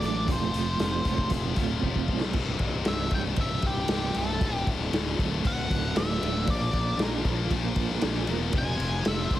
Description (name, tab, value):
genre	quiet-loud alternative rock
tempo	116 BPM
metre	4/4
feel	straight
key	C mixolydian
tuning	A4 = 439 Hz
part	octave-fuzz lead guitar	melody	0.0-9.4 s	G4 to Ab5	-32 LUFS	left 1 dB	distortion, slapback echo
part	mellow electric guitar	arpeggios	0.0-9.4 s	C2 to Bb4	-34 LUFS	right 7 dB	tremolo
part	heavy high-gain guitar	riff	0.0-9.4 s	C2 to Bb3	-33 LUFS	left 8 dB	distortion
part	fuzz fingered electric bass	bass	0.0-9.4 s	C1 to B1	-31 LUFS	equal	overdrive
part	raw garage drum kit	drums	0.0-9.4 s	crash cymbal, hi-hat, kick drum, ride cymbal, snare drum	-28 LUFS	equal	none
room	light reverb, small room ambience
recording	heavily compressed radio sound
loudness	-24 LUFS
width	side -13 dB against mid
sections	0.0-2.4 A section; 2.4-9.4 B section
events	drum fill 1.8-2.4; lead electric guitar solo 2.4-9.4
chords	0.3 F; 2.4 C; 4.4 D; 6.5 Bb; 8.5 Fm